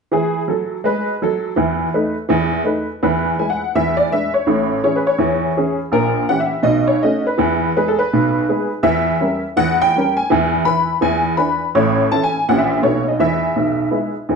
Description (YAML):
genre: jazz, stride piano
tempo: 165 BPM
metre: 4/4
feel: swing 64% on 8ths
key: E major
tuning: A4 = 440 Hz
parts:
  - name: honky-tonk upright piano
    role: solo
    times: 0.1-14.4 s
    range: A1 to B5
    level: -15 LUFS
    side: equal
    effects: none
room: wet stone room reverb, RT60 1.1 s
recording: band playing live in one room, nothing above 10.9 kHz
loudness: -15 LUFS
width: side -5 dB against mid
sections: 0.1-3.0 A section; 3.0-14.4 B section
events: none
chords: 0.1 E; 1.6 B7/E; 3.0 E; 3.7 E7; 4.5 Amaj7; 5.9 A#dim7; 6.7 Bsus2; 7.4 E; 8.8 Edim7; 10.3 E; 11.0 E7; 11.7 A; 12.5 A#dim7; 12.8 B7; 13.2 E